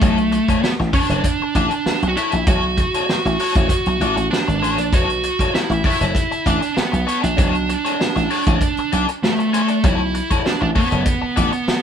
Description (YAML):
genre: funk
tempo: 98 BPM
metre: 4/4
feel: straight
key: B minor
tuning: A4 = 438 Hz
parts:
  - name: fuzz lead guitar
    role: melody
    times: 0.0-11.8 s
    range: A3 to F#4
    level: -20 LUFS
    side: right 2 dB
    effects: distortion, tape echo
  - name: crunchy overdriven guitar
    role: accompaniment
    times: 0.0-11.6 s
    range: D4 to D5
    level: -24 LUFS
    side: left 6 dB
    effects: wah
  - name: dry thumbed slap bass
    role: bass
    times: 0.0-11.7 s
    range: F#1 to B1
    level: -21 LUFS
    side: equal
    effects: none
  - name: vintage drum kit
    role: drums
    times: 0.0-11.8 s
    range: hi-hat, kick drum, snare drum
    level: -21 LUFS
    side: equal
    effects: none
room: light reverb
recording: band playing live in one room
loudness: -16 LUFS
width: side -8 dB against mid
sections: 0.0-11.8 A section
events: none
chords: 0.0 Bm9